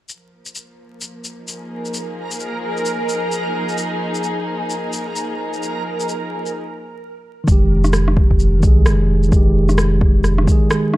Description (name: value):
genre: future garage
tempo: 130 BPM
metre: 4/4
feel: swing 61% on 16ths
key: F minor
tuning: A4 = 441 Hz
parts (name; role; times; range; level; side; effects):
- dark studio string section; sustained chords; 0.1-6.6 s; F3 to Ab4; -25 LUFS; left 1 dB; sidechain pumping
- electronic shaker and rim click; drums; 0.1-11.0 s; none; -24 LUFS; equal; overdrive
- backwards swelling texture; texture; 1.8-6.5 s; Bb4; -27 LUFS; right 3 dB; built-in reverb
- mellow tine electric piano; accompaniment; 7.4-11.0 s; Eb3 to Ab4; -18 LUFS; right 1 dB; slow stereo tremolo, sidechain pumping, tape echo
- warm sub bass; bass; 7.5-10.5 s; F1 to C2; -16 LUFS; equal; tube saturation, sidechain pumping
- electronic kick drum; drums; 7.5-10.6 s; none; -14 LUFS; equal; overdrive
room: digital ambience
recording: dark, warm production, vinyl crackle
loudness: -15 LUFS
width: side -17 dB against mid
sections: 0.1-7.5 A section; 7.5-11.0 B section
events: fade-in on string section 0.1-7.5; break 6.5-7.5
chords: 0.1 Fm7; 7.5 Fm9